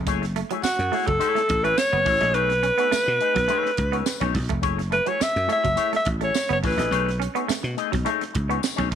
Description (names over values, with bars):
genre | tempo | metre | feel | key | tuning
funk | 105 BPM | 4/4 | straight | F# dorian | A4 = 439 Hz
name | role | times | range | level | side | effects
dry thumbed slap bass | bass | 0.0-8.9 s | E1 to B2 | -26 LUFS | equal | none
electric guitar with an envelope filter | accompaniment | 0.1-8.9 s | A3 to D#5 | -28 LUFS | left 16 dB | analog chorus
crisp fusion drum kit | drums | 0.1-8.9 s | hi-hat, kick drum, snare drum | -30 LUFS | right 4 dB | none
clean electric guitar | riff | 0.2-8.9 s | F#3 to C#4 | -32 LUFS | right 14 dB | none
breathy alto saxophone | melody | 0.6-7.2 s | F#4 to E5 | -22 LUFS | equal | none
tambourine | percussion | 0.6-8.8 s | none | -34 LUFS | left 16 dB | none
room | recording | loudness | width
light reverb, small room ambience | 1960s-style stereo with parts hard left and right | -20 LUFS | side -8 dB against mid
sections
0.0-8.9 A section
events
none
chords
0.1 F#m9; 2.4 B13; 4.6 F#m9; 6.9 B13